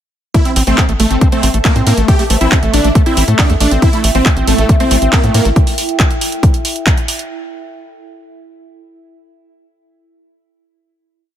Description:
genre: psychedelic trance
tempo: 138 BPM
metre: 4/4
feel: straight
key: A minor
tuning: A4 = 441 Hz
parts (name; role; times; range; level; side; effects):
- dense compressed supersaw; melody; 0.3-5.4 s; A3 to G4; -17 LUFS; right 1 dB; phaser, cassette tape, sidechain pumping, ping-pong delay
- overdriven acid bass; riff; 0.3-5.5 s; A3 to C4; -19 LUFS; equal; distortion, auto-pan, sidechain pumping, ping-pong delay
- electronic kick drum; drums; 0.3-7.0 s; none; -12 LUFS; equal; none
- techno drum kit; drums; 0.3-7.3 s; handclaps, hi-hat; -18 LUFS; right 1 dB; none
- warbly tape-like pad; texture; 1.0-7.3 s; A4 to A5; -25 LUFS; right 2 dB; chorus, built-in reverb, sidechain pumping
- tight sequencer bass; bass; 0.6-5.5 s; A1 to A2; -14 LUFS; equal; none
- formant-sweep wobble bass; second line; 2.3-2.6 s; C4; -30 LUFS; right 1 dB; none
- overtone-sweeping drone; sustained chords; 4.1-5.6 s; E4; -24 LUFS; equal; chorus, built-in reverb, sidechain pumping
room: digital ambience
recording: none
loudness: -10 LUFS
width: side -10 dB against mid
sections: 0.3-7.3 groove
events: none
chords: 0.3 A5

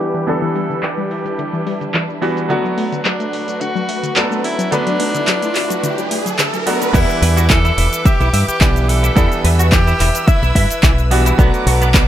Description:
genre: nu-disco, nu disco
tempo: 108 BPM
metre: 4/4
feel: straight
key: E minor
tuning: A4 = 441 Hz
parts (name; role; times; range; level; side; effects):
- edgy tenor saxophone; melody; 0.0-11.1 s; D4 to A4; -23 LUFS; left 1 dB; ping-pong delay
- bright baby grand piano; accompaniment; 0.0-12.1 s; E3 to F#5; -21 LUFS; right 1 dB; sidechain pumping
- rich symphonic string section; sustained chords; 0.0-12.1 s; G3 to E6; -24 LUFS; right 1 dB; sidechain pumping
- wide unison pluck; arpeggios; 0.0-6.9 s; D3 to F#4; -24 LUFS; left 3 dB; sidechain pumping, ping-pong delay
- pop drum kit; drums; 0.0-12.1 s; crash cymbal, handclaps, hi-hat, shaker; -20 LUFS; equal; overdrive
- riser; sound effects; 4.4-6.9 s; none; -24 LUFS; right 2 dB; none
- direct-recorded clean electric guitar; riff; 6.9-12.0 s; B2 to E5; -23 LUFS; right 2 dB; ensemble chorus
- fingered electric bass with an envelope filter; bass; 6.9-12.1 s; E1 to G2; -15 LUFS; equal; tube saturation, sidechain pumping
- electronic kick drum; drums; 6.9-12.1 s; none; -13 LUFS; equal; overdrive
room: light reverb, digital ambience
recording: low-pass filter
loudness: -13 LUFS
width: side -11 dB against mid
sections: 0.0-6.9 A section; 6.9-12.1 B section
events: filter sweep on grand piano 0.0-6.9; filter sweep 0.0-6.9; riser 4.4-6.9; drop 6.9-12.1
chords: 0.0 Em7; 2.5 Bm7; 6.9 Em7; 11.4 Bm7

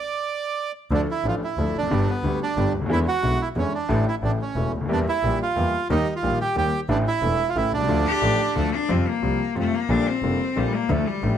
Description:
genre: tango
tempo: 180 BPM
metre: 3/4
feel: rubato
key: D harmonic minor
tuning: A4 = 440 Hz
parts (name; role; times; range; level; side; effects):
- bandoneon; melody; 0.0-8.7 s; B3 to D5; -24 LUFS; right 5 dB; none
- clear concert grand piano; accompaniment; 0.9-11.4 s; E1 to A4; -25 LUFS; left 2 dB; none
- bright double bass; bass; 0.9-11.4 s; E1 to F2; -26 LUFS; equal; none
- bright cello; second line; 8.1-11.4 s; G3 to G4; -24 LUFS; left 6 dB; none
room: moderate studio reverb, RT60 0.9 s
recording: none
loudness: -20 LUFS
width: side -9 dB against mid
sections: 0.9-8.9 A section; 8.9-11.4 B section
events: stop 0.0-0.9; cello solo 8.9-11.4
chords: 0.0 N.C.; 0.9 Dm; 1.9 G; 2.9 E7; 3.9 Asus4; 4.2 A; 4.9 Edim; 5.9 Eb; 6.9 Asus4; 7.6 A; 7.9 Dm; 8.9 Fsus2; 9.9 Bb6

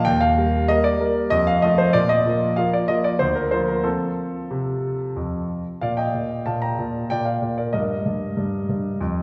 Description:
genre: classical-period piano sonatina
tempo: 94 BPM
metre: 3/4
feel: straight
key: Bb major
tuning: A4 = 443 Hz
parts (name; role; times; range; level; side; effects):
- clear grand piano; solo; 0.0-9.2 s; D2 to Bb5; -22 LUFS; equal; none
room: wet recital hall reverb, RT60 1.7 s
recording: heard from further back in the room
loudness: -22 LUFS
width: mono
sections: 0.0-5.8 A section; 5.8-9.2 B section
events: none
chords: 0.1 Eb; 1.3 F; 1.9 Bb5; 3.2 Bb/D; 3.9 F; 5.8 Bb; 7.7 Eb/G

